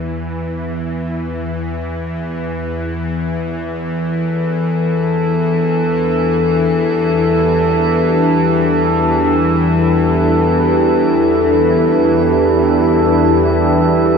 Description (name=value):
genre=dark ambient drone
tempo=free time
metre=none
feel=none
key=E minor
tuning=A4 = 440 Hz
part: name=bowed-like drone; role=drone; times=0.0-14.2 s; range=E2 to E3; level=-16 LUFS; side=left 1 dB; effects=built-in reverb
part: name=deep dark ambient pad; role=sustained chords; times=6.0-14.2 s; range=D4 to B4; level=-16 LUFS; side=right 1 dB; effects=chorus, built-in reverb
part: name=metallic inharmonic drone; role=texture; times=4.4-14.2 s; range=A4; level=-17 LUFS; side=left 1 dB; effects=chorus, built-in reverb
room=wet huge ambient reverb, RT60 7.6 s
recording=small room reverb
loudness=-13 LUFS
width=side -6 dB against mid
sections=0.0-14.2 A section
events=fade-in on synth drone 0.0-14.2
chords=0.0 E5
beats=free time